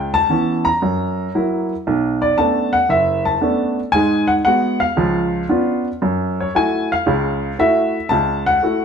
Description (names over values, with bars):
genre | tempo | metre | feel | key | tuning
solo jazz | 115 BPM | 4/4 | swing 69% on 8ths | F# minor | A4 = 440 Hz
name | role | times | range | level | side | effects
warm upright piano | solo | 0.0-8.8 s | F#1 to A#5 | -15 LUFS | equal | none
room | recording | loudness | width
moderate studio reverb, RT60 0.9 s | band playing live in one room | -15 LUFS | side -6 dB against mid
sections
0.0-8.8 A section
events
none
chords
0.0 C#m7b5; 0.8 F#7; 1.9 Bm9; 3.9 G#m7; 5.0 C#7b9; 6.0 F#m7